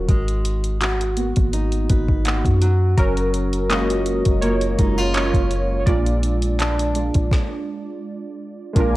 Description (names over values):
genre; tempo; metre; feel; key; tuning
contemporary R&B; 83 BPM; 4/4; swing 54% on 16ths; unclear; A4 = 440 Hz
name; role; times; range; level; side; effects
warm analog keys; accompaniment; 0.0-9.0 s; Gb3 to Eb5; -24 LUFS; right 1 dB; chorus
fingerpicked steel-string acoustic guitar; arpeggios; 0.0-9.0 s; Bb2 to Cb5; -25 LUFS; right 1 dB; analog delay
soft 808-style bass; bass; 0.0-9.0 s; Gb1 to Gb2; -21 LUFS; equal; none
smooth R&B drum kit; drums; 0.1-8.9 s; handclaps, hi-hat, kick drum, snare drum; -20 LUFS; equal; none
lush unison pad; sustained chords; 8.8-9.0 s; Bb4 to D6; -28 LUFS; left 3 dB; chorus, phaser
room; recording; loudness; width
digital ambience; dry, gritty hardware recording, cassette tape; -17 LUFS; side -17 dB against mid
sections
0.0-8.8 A section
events
synth keys solo 0.0-8.8; stop 7.3-8.8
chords
0.1 Abm7; 2.6 Gbmaj7; 5.9 Bb7